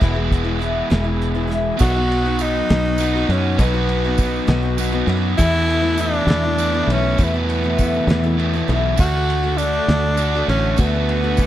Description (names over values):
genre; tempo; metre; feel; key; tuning
folk rock and heartland rock; 67 BPM (dotted quarters); 6/8; straight; E major; A4 = 439 Hz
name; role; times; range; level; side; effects
picked twelve-string acoustic guitar; accompaniment; 0.0-11.5 s; E2 to F#4; -25 LUFS; left 4 dB; none
tonewheel organ; sustained chords; 0.0-11.5 s; D#4 to A5; -33 LUFS; equal; none
crunchy overdriven guitar; riff; 0.0-11.5 s; E2 to F#4; -23 LUFS; right 2 dB; none
fingered electric bass; bass; 0.0-11.5 s; E1 to F#2; -21 LUFS; equal; none
cloth-damped thuddy drum kit; drums; 0.0-11.5 s; crash cymbal, hi-hat, kick drum, ride cymbal, snare drum; -23 LUFS; equal; none
bright tenor saxophone; melody; 1.8-11.5 s; B3 to F#4; -22 LUFS; equal; none
tambourine; percussion; 1.8-11.5 s; none; -37 LUFS; right 23 dB; none
room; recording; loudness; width
little or no reverb; dry, close 1970s-style studio recording; -16 LUFS; side -12 dB against mid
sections
0.0-1.8 A section; 1.8-11.5 B section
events
none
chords
0.0 E; 1.8 B; 5.4 Esus4; 9.0 D